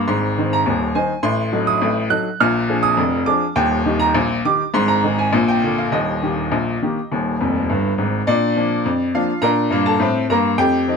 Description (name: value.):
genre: ragtime piano.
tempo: 103 BPM.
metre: 2/4.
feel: straight.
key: Eb major.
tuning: A4 = 440 Hz.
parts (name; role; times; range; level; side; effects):
bright upright piano; solo; 0.0-11.0 s; Eb1 to F#6; -16 LUFS; equal; none.
room: moderate club reverb, RT60 0.5 s.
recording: none.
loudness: -16 LUFS.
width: side -5 dB against mid.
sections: 0.0-8.3 A section; 8.3-11.0 B section.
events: upright piano fill 7.4-8.3.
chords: 0.1 Ab; 1.3 Adim7; 2.4 Bb7; 3.6 Eb; 4.7 Ab5; 5.3 Bb; 5.9 Eb; 8.3 Bb.